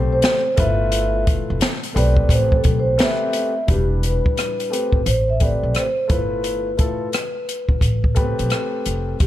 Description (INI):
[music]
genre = hip hop, jazz-hop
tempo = 87 BPM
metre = 4/4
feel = swing 65% on 16ths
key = A minor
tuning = A4 = 440 Hz
[part]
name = vibraphone with soft mallets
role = melody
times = 0.0-9.3 s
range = G4 to E5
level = -22 LUFS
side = right 1 dB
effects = none
[part]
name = dark baby grand piano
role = accompaniment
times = 0.0-9.2 s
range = F#3 to C5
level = -26 LUFS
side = left 2 dB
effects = none
[part]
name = upright bass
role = bass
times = 0.0-9.3 s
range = E1 to B1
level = -21 LUFS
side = equal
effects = none
[part]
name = open jazz drum kit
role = drums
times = 0.2-9.3 s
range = hi-hat, kick drum, rim click, snare drum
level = -20 LUFS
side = equal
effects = none
[sound]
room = studio reverb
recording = none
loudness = -17 LUFS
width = side -13 dB against mid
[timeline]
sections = 0.0-3.7 A section; 3.7-9.3 B section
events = vibraphone solo 0.0-3.7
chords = 0.0 Am9; 0.6 G13; 2.3 Am9; 3.7 Em7; 5.1 Am9; 6.1 G13; 7.8 Am9